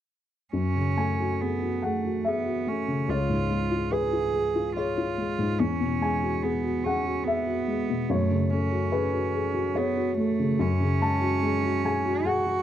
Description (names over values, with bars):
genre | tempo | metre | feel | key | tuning
neoclassical piano and strings | 72 BPM | 3/4 | rubato | F# minor | A4 = 440 Hz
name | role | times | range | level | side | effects
rich cello | second line | 0.5-12.6 s | A3 to G#4 | -29 LUFS | right 8 dB | none
dark baby grand piano | accompaniment | 0.5-12.6 s | C#2 to A5 | -25 LUFS | left 2 dB | none
room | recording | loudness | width
little or no reverb | dry, close 1970s-style studio recording | -24 LUFS | side -11 dB against mid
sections
0.6-12.6 A section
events
none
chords
0.6 F#madd9; 3.1 C#; 5.6 Eadd9; 8.1 F#madd9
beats
| 0.55 1.41 2.27 | 3.11 3.94 4.78 | 5.61 6.44 7.27 | 8.11 8.95 9.78 | 10.62 11.45 12.27